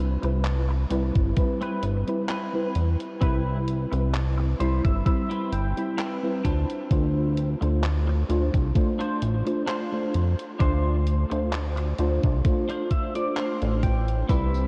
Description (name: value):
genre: vaporwave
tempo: 65 BPM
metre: 4/4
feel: swing 54% on 16ths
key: D dorian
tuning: A4 = 441 Hz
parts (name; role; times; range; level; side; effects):
- mellow FM electric piano; accompaniment; 0.0-14.7 s; G3 to B5; -30 LUFS; equal; ensemble chorus, tape echo
- chorused synth bass; bass; 0.0-14.7 s; G1 to F2; -27 LUFS; equal; tube saturation
- clean electric guitar; riff; 0.2-14.7 s; C4 to A5; -36 LUFS; equal; analog chorus, low-pass filter, tape echo
- detuned 8-bit digital drum machine; drums; 0.2-14.7 s; handclaps, hi-hat, tambourine; -41 LUFS; equal; none
- electronic kick drum; drums; 1.2-14.5 s; none; -26 LUFS; equal; none
room: moderate huge ambient reverb, RT60 8.1 s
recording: dreamy mix soaked in reverb, cassette tape, nothing above 10.7 kHz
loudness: -25 LUFS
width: mono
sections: 0.0-14.7 A section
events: clean electric guitar fill 4.1-6.9, 12.5-14.3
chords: 0.0 Cmaj7; 6.5 Dm7